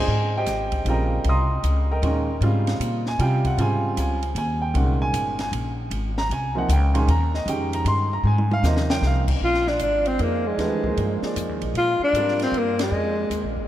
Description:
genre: modal jazz.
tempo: 154 BPM.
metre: 3/4.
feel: swing 64% on 8ths.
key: Ab major, Bb mixolydian from 9.4 s.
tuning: A4 = 440 Hz.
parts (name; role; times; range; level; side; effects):
warm grand piano; accompaniment; 0.0-12.7 s; Bb2 to Eb6; -25 LUFS; right 2 dB; none.
upright bass; bass; 0.0-13.7 s; G1 to C3; -23 LUFS; equal; none.
compact cocktail drum kit; drums; 0.5-13.4 s; crash cymbal, hi-hat, kick drum, ride cymbal, snare drum, toms; -32 LUFS; equal; none.
breathy tenor saxophone; melody; 9.4-13.5 s; Ab3 to F4; -22 LUFS; left 1 dB; none.
room: moderate cathedral reverb, RT60 5.9 s.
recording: in a vast, echoing space.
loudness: -20 LUFS.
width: side -12 dB against mid.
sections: 0.1-9.4 A section; 9.4-13.7 B section.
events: drum fill 8.3-9.0; band accent 12.7.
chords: 0.1 Abmaj9; 9.4 Bb9sus4.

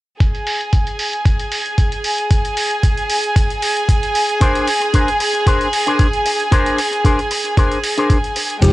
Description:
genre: nu-disco, nu disco.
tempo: 114 BPM.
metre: 4/4.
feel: swing 54% on 16ths.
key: unclear.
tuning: A4 = 443 Hz.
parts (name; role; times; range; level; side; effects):
warm chamber violin section; sustained chords; 0.2-8.7 s; Ab3 to Ab5; -19 LUFS; right 1 dB; sidechain pumping.
dusty soul sampler-style drum kit; drums; 0.2-8.7 s; cabasa, crash cymbal, hi-hat; -24 LUFS; right 1 dB; low-pass filter on hats, small room reverb, low-pass filter on cymbals, low-pass filter on perc.
electronic kick drum; drums; 0.2-8.7 s; none; -15 LUFS; equal; small room reverb.
electric guitar with an envelope filter; riff; 4.4-8.4 s; D4 to C5; -20 LUFS; left 2 dB; analog chorus, analog delay.
tine electric piano; accompaniment; 8.6-8.7 s; F3 to G4; -14 LUFS; left 2 dB; overdrive, auto-pan.
fingered electric bass with an envelope filter; bass; 8.6-8.7 s; F1; -12 LUFS; equal; none.
room: digital ambience.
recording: dry, gritty hardware recording, cassette tape.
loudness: -14 LUFS.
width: side -17 dB against mid.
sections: 0.2-8.6 A section.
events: none.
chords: 0.2 N.C.; 4.4 Bb9.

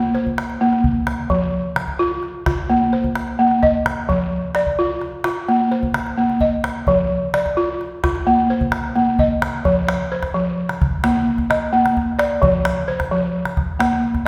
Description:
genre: west african traditional, West African string and xylophone music.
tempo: 86 BPM (dotted quarters).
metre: 12/8.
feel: straight.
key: unclear.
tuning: A4 = 440 Hz.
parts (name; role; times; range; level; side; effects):
balafon; arpeggios; 0.0-14.3 s; F3 to Eb5; -20 LUFS; equal; none.
calabash; percussion; 0.2-14.2 s; none; -25 LUFS; equal; none.
room: wet recital hall reverb, RT60 1.6 s.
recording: recorded in a church or concert hall.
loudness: -19 LUFS.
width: mono.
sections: 0.0-9.6 A section; 9.6-14.3 B section.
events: none.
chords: 0.0 Bb5; 1.3 N.C.; 2.7 Bb5; 4.1 Dm/F; 5.5 Bb5; 6.9 Dm/F; 8.3 Bb5; 9.6 F5; 11.0 Bb; 12.4 F5.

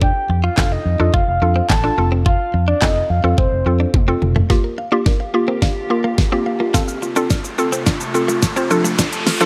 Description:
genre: dance-pop.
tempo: 107 BPM.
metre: 4/4.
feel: straight.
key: unclear.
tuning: A4 = 440 Hz.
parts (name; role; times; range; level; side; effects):
soft octave-layered synth lead; melody; 0.0-3.9 s; C5 to A5; -24 LUFS; equal; chorus, phaser, delay.
mallet-like synth pluck; accompaniment; 0.0-9.5 s; F3 to C5; -23 LUFS; equal; chorus, sidechain pumping.
direct-recorded clean electric guitar; riff; 0.0-9.5 s; A3 to F4; -28 LUFS; equal; subtle chorus.
vintage muted fingered electric bass; bass; 0.0-4.4 s; F1 to F2; -20 LUFS; equal; sidechain pumping.
pop drum kit; drums; 0.0-9.5 s; handclaps, hi-hat, kick drum, shaker, snare drum, toms; -20 LUFS; equal; none.
glassy FM pad; sustained chords; 5.3-9.5 s; F2 to A4; -30 LUFS; equal; ensemble chorus, built-in reverb, sidechain pumping.
mallet-like synth pluck; arpeggios; 4.5-9.5 s; F4 to F6; -29 LUFS; equal; chorus, sidechain pumping, delay.
riser; sound effects; 5.8-9.5 s; none; -30 LUFS; equal; none.
room: light reverb.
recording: high-pass filter.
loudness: -17 LUFS.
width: mono.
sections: 0.0-4.5 A section; 4.5-9.5 B section.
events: drum fill 3.9-4.5, 4.5-9.5; build-up 4.5-9.5; filter sweep 4.5-9.5; riser 5.9-9.5.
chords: 0.0 F; 4.5 Gm7; 6.7 F; 8.7 Dm/F.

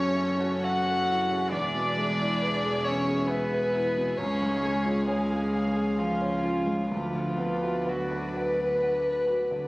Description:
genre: neoclassical piano and strings.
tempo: 66 BPM.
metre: 3/4.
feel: rubato.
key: unclear.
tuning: A4 = 440 Hz.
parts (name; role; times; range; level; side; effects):
dark violin; melody; 0.0-9.7 s; E#4 to F#5; -29 LUFS; left 1 dB; none.
clear cello; second line; 0.0-9.3 s; E#3 to F#4; -32 LUFS; right 1 dB; none.
felt-muted upright piano; accompaniment; 0.0-9.7 s; C#2 to F#5; -32 LUFS; right 1 dB; none.
rich chamber string section; sustained chords; 0.0-9.7 s; B3 to E#5; -35 LUFS; equal; none.
warm double bass; bass; 0.0-9.7 s; E1 to D2; -33 LUFS; equal; none.
room: moderate recital hall reverb, RT60 1.4 s.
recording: recorded on a phone in the room, studio reverb.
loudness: -24 LUFS.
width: side -20 dB against mid.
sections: 0.0-9.7 A section.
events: none.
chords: 0.0 F#m7; 1.5 E7; 4.2 C#; 6.9 Bm/D.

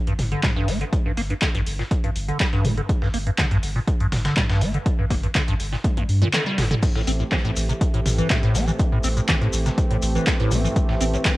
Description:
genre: acid house.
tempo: 122 BPM.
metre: 4/4.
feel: straight.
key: A phrygian.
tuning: A4 = 439 Hz.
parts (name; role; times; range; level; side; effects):
liquid acid bass; riff; 0.1-11.3 s; G2 to C4; -24 LUFS; equal; phaser, tube saturation, analog chorus, sidechain pumping, cassette tape, analog delay.
punchy analog drum machine; drums; 0.1-11.4 s; crash cymbal, handclaps, hi-hat, toms; -26 LUFS; equal; overdrive.
warm sub bass; bass; 0.2-11.2 s; G1 to G2; -25 LUFS; equal; tube saturation, sidechain pumping.
dusty soul sampler-style drum kit; drums; 0.2-11.4 s; hi-hat, snare drum; -34 LUFS; equal; sidechain pumping on hats, high-pass filter on hats, high-pass filter on snare.
electronic kick drum; drums; 0.4-11.4 s; none; -22 LUFS; equal; overdrive.
warm analog pad; sustained chords; 6.8-11.4 s; E3 to G4; -28 LUFS; right 1 dB; chorus, sidechain pumping, cassette tape.
shekere; percussion; 6.8-11.4 s; none; -33 LUFS; left 4 dB; none.
room: light reverb.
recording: home recording on cassette.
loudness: -19 LUFS.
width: side -18 dB against mid.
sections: 0.0-6.8 A section; 6.8-11.4 B section.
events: drum fill 5.8-6.8; kick drops out 6.3-6.8; band accent 6.3; drop 6.8-11.4.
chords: 0.0 N.C.; 6.8 Am7.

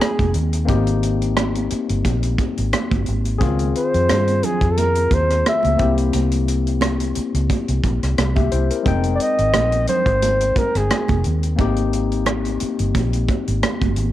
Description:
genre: lush 1970s-style soul.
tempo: 88 BPM.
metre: 4/4.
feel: swing 54% on 16ths.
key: F minor.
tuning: A4 = 440 Hz.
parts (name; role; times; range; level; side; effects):
breathy flugelhorn; melody; 0.0-11.3 s; Ab4 to E5; -20 LUFS; equal; cassette tape.
barky tine electric piano; accompaniment; 0.0-14.1 s; Eb3 to G5; -24 LUFS; left 8 dB; cassette tape.
tight funk drum kit; drums; 0.0-14.1 s; hi-hat, kick drum, rim click; -23 LUFS; equal; cassette tape.
congas; percussion; 0.0-14.0 s; none; -27 LUFS; right 10 dB; none.
vintage muted fingered electric bass; bass; 0.2-14.1 s; F1 to G2; -20 LUFS; equal; none.
room: light reverb, small room ambience.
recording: home recording on cassette.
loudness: -16 LUFS.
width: side -13 dB against mid.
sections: 0.0-14.1 A section.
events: none.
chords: 0.0 Fm7; 0.7 Abmaj7; 3.4 Dbmaj9; 5.8 C7; 8.9 Fm7; 11.6 Abmaj7.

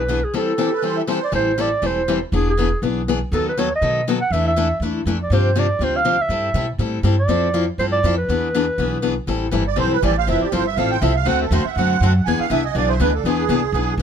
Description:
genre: acoustic string swing (jazz manouche).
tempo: 242 BPM.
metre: 4/4.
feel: swing 57% on 8ths.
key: A minor.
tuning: A4 = 440 Hz.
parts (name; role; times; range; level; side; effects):
mellow clarinet; melody; 0.0-9.1 s; G#4 to F#5; -21 LUFS; right 2 dB; none.
upright bass; bass; 0.0-14.0 s; E1 to B2; -21 LUFS; right 1 dB; none.
picked steel-string acoustic guitar; accompaniment; 0.1-14.0 s; C3 to A4; -21 LUFS; left 5 dB; none.
musette accordion; second line; 0.6-1.3, 9.7-14.0 s; G4 to G#5; -22 LUFS; right 12 dB; tape echo.
room: little or no reverb.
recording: close, detailed microphones.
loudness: -17 LUFS.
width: side -8 dB against mid.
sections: 0.0-1.3 A section; 1.3-9.3 B section; 9.3-14.0 C section.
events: accordion solo 9.3-14.0.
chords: 0.3 Am7; 2.3 E7; 3.3 B7/D#; 4.3 E7sus4; 5.3 G7sus4; 6.3 C6/G; 7.3 Fmaj9; 8.3 E7; 9.3 Am7; 10.3 Fmaj7; 11.3 D7; 12.3 E7.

